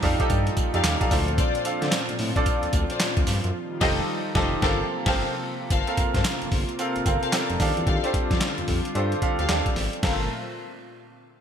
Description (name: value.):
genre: R&B, new jack swing.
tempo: 111 BPM.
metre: 4/4.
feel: swing 62% on 16ths.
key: G minor.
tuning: A4 = 441 Hz.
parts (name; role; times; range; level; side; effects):
clear baby grand piano; accompaniment; 0.0-10.3 s; C4 to G5; -28 LUFS; right 2 dB; lush chorus.
warm analog pad; sustained chords; 0.0-10.3 s; Bb2 to F4; -32 LUFS; left 1 dB; lush chorus.
smooth synth bass; bass; 0.0-10.3 s; F1 to D3; -28 LUFS; equal; none.
boom bap sampler-style drum kit; drums; 0.0-10.2 s; crash cymbal, handclaps, hi-hat, kick drum, snare drum, tambourine; -25 LUFS; equal; gated reverb.
dark studio string section; stabs; 0.7-10.2 s; F4 to F5; -32 LUFS; left 6 dB; ping-pong delay.
room: light reverb.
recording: bright 1980s-style digital production.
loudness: -22 LUFS.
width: side -8 dB against mid.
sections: 0.0-5.7 A section; 5.7-10.0 B section; 10.0-11.4 C section.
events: kick muted 3.5-5.7; band accent 3.5-5.7.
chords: 0.0 Ebmaj9#11; 1.1 Dm7; 3.5 F9; 4.6 Gm11; 7.6 Ebmaj9#11; 10.0 Gm11.